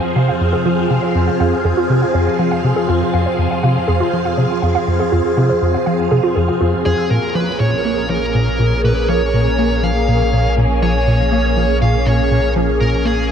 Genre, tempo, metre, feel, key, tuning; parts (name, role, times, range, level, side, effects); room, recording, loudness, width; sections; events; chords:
ambient, sequencer-driven space music; 121 BPM; 4/4; straight; F minor, Bb minor from 7.1 s; A4 = 440 Hz
phased string machine; sustained chords; 0.0-13.3 s; F2 to F5; -18 LUFS; equal; ensemble chorus, phaser
wind-like tuned noise texture; texture; 0.0-13.3 s; C5 to Db5; -33 LUFS; right 2 dB
warbly dusty pluck; arpeggios; 0.2-7.1 s; F4 to E6; -22 LUFS; moving between left 3 dB and right 4 dB; chorus, auto-pan, vintage 12-bit sampler grit, tape echo
tight sequencer bass; riff; 0.2-13.3 s; F2 to Bb3; -18 LUFS; equal; ensemble chorus, tape echo
dark smooth lead guitar; melody; 6.9-13.3 s; Ab4 to F5; -22 LUFS; equal; overdrive, tape echo
warm sub bass; bass; 7.1-13.3 s; Bb1; -19 LUFS; equal
wet huge ambient reverb, RT60 9.3 s; dark, warm production; -13 LUFS; side -8 dB against mid
0.0-7.1 A section; 7.1-13.3 B section
0.0 Fm; 7.1 Bbm7